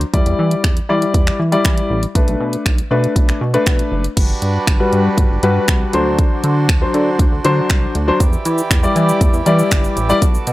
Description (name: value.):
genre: dance-pop.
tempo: 119 BPM.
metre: 4/4.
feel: straight.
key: unclear.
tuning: A4 = 440 Hz.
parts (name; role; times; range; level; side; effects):
chorused synth bass; bass; 0.0-10.5 s; F#1 to E3; -18 LUFS; equal; sidechain pumping.
pop drum kit; drums; 0.0-10.5 s; crash cymbal, finger snaps, hi-hat, kick drum, shaker; -15 LUFS; equal; none.
warm baby grand piano; accompaniment; 0.1-10.2 s; F#3 to D5; -18 LUFS; left 3 dB; sidechain pumping.
pedal harmonium; sustained chords; 4.2-10.5 s; D3 to D5; -23 LUFS; right 3 dB; sidechain pumping.
room: digital ambience.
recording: dry, gritty hardware recording.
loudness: -13 LUFS.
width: side -17 dB against mid.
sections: 0.0-4.2 A section; 4.2-10.5 B section.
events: none.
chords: 0.1 Em7; 2.2 Bm7; 4.2 Gmaj7; 5.9 D7; 8.2 Em7.